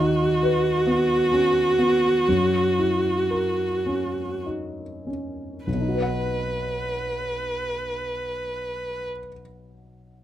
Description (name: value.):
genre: classical, slow romantic movement for piano quartet.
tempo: 31-47 BPM (dotted quarters).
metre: 12/8.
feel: rubato.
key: B major.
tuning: A4 = 440 Hz.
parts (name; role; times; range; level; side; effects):
rich viola; accompaniment; 0.0-9.0 s; F#4 to B4; -23 LUFS; right 1 dB; none.
warm grand piano; accompaniment; 0.0-10.2 s; B1 to F#5; -26 LUFS; left 1 dB; none.
room: little or no reverb.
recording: close, detailed microphones.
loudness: -21 LUFS.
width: side -12 dB against mid.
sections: 0.0-5.7 A section; 5.7-10.2 B section.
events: slowing down 0.0-5.7.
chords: 0.0 B/D#; 2.3 F#7; 5.7 B.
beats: 0.86 2.27 3.85 | 5.67 7.41 9.20.